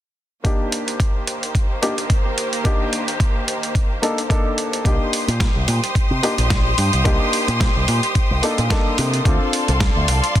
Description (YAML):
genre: nu-disco, nu disco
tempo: 109 BPM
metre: 4/4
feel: swing 56% on 16ths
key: C dorian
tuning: A4 = 440 Hz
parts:
  - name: warm baby grand piano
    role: accompaniment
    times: 0.4-10.4 s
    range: Bb3 to A4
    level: -24 LUFS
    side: left 1 dB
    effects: low-pass filter, tape echo
  - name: rich symphonic string section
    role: sustained chords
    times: 0.4-10.4 s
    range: Eb3 to Eb6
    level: -24 LUFS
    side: equal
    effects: sidechain pumping
  - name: dusty soul sampler-style drum kit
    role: drums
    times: 0.4-10.4 s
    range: hi-hat, snare drum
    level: -25 LUFS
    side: right 2 dB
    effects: studio reverb
  - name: electronic kick drum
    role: drums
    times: 0.4-10.4 s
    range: none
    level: -18 LUFS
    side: equal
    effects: studio reverb
  - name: picked electric bass with an envelope filter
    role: bass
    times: 4.9-10.4 s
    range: Bb1 to C3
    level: -20 LUFS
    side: equal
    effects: none
room: light reverb, small room reverb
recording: dense, heavily limited modern master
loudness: -17 LUFS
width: side -12 dB against mid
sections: 0.4-4.9 A section; 4.9-10.4 B section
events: none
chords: 0.4 Cm7; 9.3 Dm7